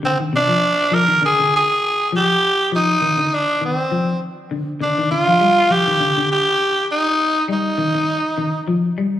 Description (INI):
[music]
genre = afrobeat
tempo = 101 BPM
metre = 4/4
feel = swing 55% on 16ths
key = unclear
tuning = A4 = 440 Hz
[part]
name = clean electric guitar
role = arpeggios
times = 0.0-9.2 s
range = C3 to G3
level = -21 LUFS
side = left 3 dB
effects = lush chorus, slapback echo
[part]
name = breathy tenor saxophone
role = melody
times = 0.1-8.6 s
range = C4 to Bb4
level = -16 LUFS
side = equal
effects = slapback echo
[sound]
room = moderate lush hall reverb, RT60 2.7 s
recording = live gig heard through the venue's PA, club ambience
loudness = -15 LUFS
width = side -11 dB against mid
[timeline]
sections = 0.0-9.2 A section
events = none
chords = 0.0 Fm6; 2.4 Cm; 4.8 Ebmaj9/D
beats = | 0.04 0.64 1.24 1.83 | 2.43 3.02 3.62 4.21 | 4.81 5.40 6.00 6.59 | 7.18 7.78 8.37 8.96